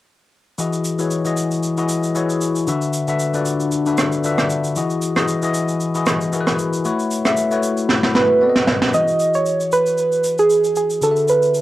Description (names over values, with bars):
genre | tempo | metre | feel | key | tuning
amapiano | 115 BPM | 4/4 | swing 55% on 16ths | E major | A4 = 441 Hz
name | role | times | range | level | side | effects
bell-like tine electric piano | accompaniment | 0.6-11.6 s | D3 to E5 | -20 LUFS | left 3 dB | phaser, cassette tape
shaker, rim click and snare drum | drums | 0.6-11.6 s | none | -22 LUFS | right 1 dB | cassette tape
soft round pluck | melody | 8.2-11.6 s | G#4 to D#5 | -15 LUFS | right 2 dB | chorus, cassette tape, tape echo
room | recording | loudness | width
light reverb | home recording on cassette | -16 LUFS | side -15 dB against mid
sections
0.6-8.9 A section; 8.9-11.6 B section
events
drum fill 7.9-8.9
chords
0.6 Emaj9; 2.7 D6; 4.8 Emaj9; 6.8 A69; 8.4 B7b9; 8.9 Emaj9; 11.0 D6